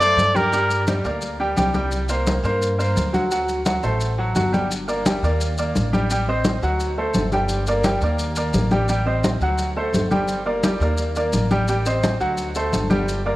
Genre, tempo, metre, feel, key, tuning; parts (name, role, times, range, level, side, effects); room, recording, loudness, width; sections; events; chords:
latin, salsa; 172 BPM; 4/4; straight; G minor; A4 = 440 Hz
clear trumpet; melody; 0.0-0.9 s; Bb4 to D5; -19 LUFS; equal; cassette tape
bright upright piano; accompaniment; 0.0-13.4 s; F#3 to G5; -22 LUFS; right 1 dB; cassette tape
upright bass; bass; 0.0-13.4 s; G1 to G2; -24 LUFS; equal
congas; percussion; 0.0-13.4 s; -24 LUFS; left 1 dB
maracas; percussion; 0.0-13.3 s; -34 LUFS; left 2 dB
moderate lush hall reverb, RT60 2.6 s; home recording on cassette; -18 LUFS; side -17 dB against mid
0.0-4.7 A section; 4.7-13.4 B section
0.0 D7; 0.5 Gm; 1.9 C5; 3.3 D7; 4.7 Gm; 5.4 Ebmaj7; 6.1 Am7b5; 6.8 D7; 7.5 Gm; 8.2 Ebmaj7; 8.9 Am7b5; 9.6 D7; 10.3 Gm; 11.0 Ebmaj7; 11.7 Am7b5; 12.4 D7